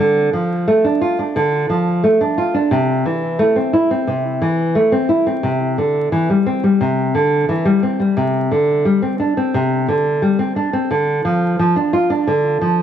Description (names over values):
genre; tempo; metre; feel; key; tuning
folktronica; 88 BPM; 4/4; straight; D minor; A4 = 440 Hz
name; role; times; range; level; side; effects
nylon-string guitar; solo; 0.0-12.8 s; C3 to F4; -14 LUFS; equal; none
room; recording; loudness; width
moderate echo chamber reverb, RT60 1.9 s; vinyl crackle; -14 LUFS; side -9 dB against mid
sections
0.0-12.8 A section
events
none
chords
none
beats
0.67 1.35 2.03 | 2.72 3.40 4.08 4.76 | 5.44 6.12 6.81 7.49 | 8.17 8.85 9.53 10.22 | 10.90 11.58 12.26